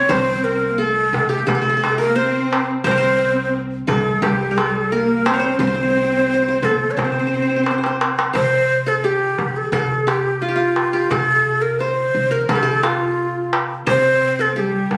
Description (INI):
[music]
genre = Turkish makam ensemble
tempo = 87 BPM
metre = 4/4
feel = straight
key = C makam hicaz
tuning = A4 = 440 Hz
[part]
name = breathy ney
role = melody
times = 0.0-15.0 s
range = F4 to Db5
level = -21 LUFS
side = equal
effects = none
[part]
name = qanun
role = second line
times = 0.0-15.0 s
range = F4 to Db5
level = -27 LUFS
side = equal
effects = none
[part]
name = rich studio cello section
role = second line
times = 0.0-8.0, 13.9-15.0 s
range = G3 to Db4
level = -26 LUFS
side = equal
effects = none
[part]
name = upright bass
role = bass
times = 0.0-15.0 s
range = C2 to C3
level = -28 LUFS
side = equal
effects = none
[part]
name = darbuka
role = percussion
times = 0.1-15.0 s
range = none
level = -25 LUFS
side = equal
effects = none
[sound]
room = moderate studio reverb, RT60 0.6 s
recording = recorded on a phone in the room, club reverb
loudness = -18 LUFS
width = mono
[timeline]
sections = 0.0-8.4 A section; 8.4-15.0 B section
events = drum fill 7.7-8.4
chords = none